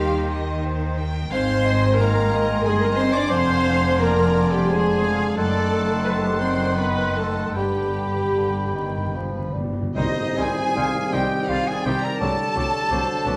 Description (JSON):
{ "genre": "classical, slow romantic movement for symphony orchestra", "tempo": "69-92 BPM", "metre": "3/4", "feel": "rubato", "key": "C minor", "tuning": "A4 = 440 Hz", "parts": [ { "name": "rich chamber violin section", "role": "melody", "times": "0.0-13.4 s", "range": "B4 to Bb5", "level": "-34 LUFS", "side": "equal", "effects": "none" }, { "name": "mellow clarinet", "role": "second line", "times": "0.0-13.4 s", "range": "G4 to F5", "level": "-32 LUFS", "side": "equal", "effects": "none" }, { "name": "rich studio violin section", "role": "second line", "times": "0.0-13.3 s", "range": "C4 to D6", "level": "-37 LUFS", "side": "equal", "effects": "none" }, { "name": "silver concert flute", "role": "second line", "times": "0.0-13.4 s", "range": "Eb5 to C6", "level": "-32 LUFS", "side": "equal", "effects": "none" }, { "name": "warm oboe", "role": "second line", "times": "0.0-13.4 s", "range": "C5 to Ab5", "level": "-36 LUFS", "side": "equal", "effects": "none" }, { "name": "rich chamber viola section", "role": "accompaniment", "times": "0.0-13.3 s", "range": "Eb3 to D5", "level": "-28 LUFS", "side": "equal", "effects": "none" }, { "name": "warm bassoon", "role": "accompaniment", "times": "0.0-13.4 s", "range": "D3 to G3", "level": "-34 LUFS", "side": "equal", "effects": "none" }, { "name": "mellow French horn section", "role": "sustained chords", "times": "0.0-13.4 s", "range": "G3 to C5", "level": "-30 LUFS", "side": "equal", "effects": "none" }, { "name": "rich chamber cello section", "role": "bass", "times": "0.0-13.4 s", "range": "F2 to Eb3", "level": "-30 LUFS", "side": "equal", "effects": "none" }, { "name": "rich chamber double bass section", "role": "bass", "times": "0.0-13.3 s", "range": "F1 to Eb2", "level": "-30 LUFS", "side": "equal", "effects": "none" }, { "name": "timpani", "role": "percussion", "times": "7.5-9.9 s", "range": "G2", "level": "-33 LUFS", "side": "equal", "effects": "none" }, { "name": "warm trombone section", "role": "sustained chords", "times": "10.0-13.4 s", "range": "D3 to G3", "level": "-33 LUFS", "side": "equal", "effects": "none" }, { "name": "clear trumpet section", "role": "stabs", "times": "10.0-13.4 s", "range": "Eb4 to Bb4", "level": "-32 LUFS", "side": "equal", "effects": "none" }, { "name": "tam-tam", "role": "percussion", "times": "10.0-12.9 s", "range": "none", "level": "-36 LUFS", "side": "equal", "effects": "none" } ], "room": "wet recital hall reverb, RT60 1.4 s", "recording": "vinyl crackle", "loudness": "-22 LUFS", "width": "mono", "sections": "0.0-10.0 A section; 10.0-13.4 B section", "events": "timpani fill 7.6-10.0; band accent 10.0-10.8", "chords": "0.0 Cm/Eb; 1.3 Ab; 3.3 Dm7b5/F; 5.4 F#dim7; 7.6 G; 10.0 Cm; 12.2 D7", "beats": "0.63 | 1.30 1.98 2.64 | 3.31 4.00 4.70 | 5.38 6.06 6.78 | 7.56 8.37 9.15 | 9.96 10.78 11.50 | 12.22 12.92" }